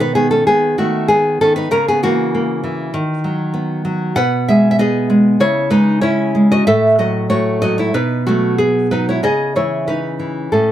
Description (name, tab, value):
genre	romantic piece for solo classical guitar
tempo	96 BPM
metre	4/4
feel	uneven beats, rubato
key	unclear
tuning	A4 = 440 Hz
part	nylon-string guitar	solo	0.0-10.7 s	A2 to F#5	-13 LUFS	equal	none
room	little or no reverb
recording	close, detailed microphones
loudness	-13 LUFS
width	side -11 dB against mid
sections	0.0-10.7 A section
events	none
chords	0.0 B; 1.7 F#7/C#; 2.9 B/D#; 4.2 G#m/B; 5.4 C#m; 6.7 F#m/A; 7.9 B; 9.2 C#m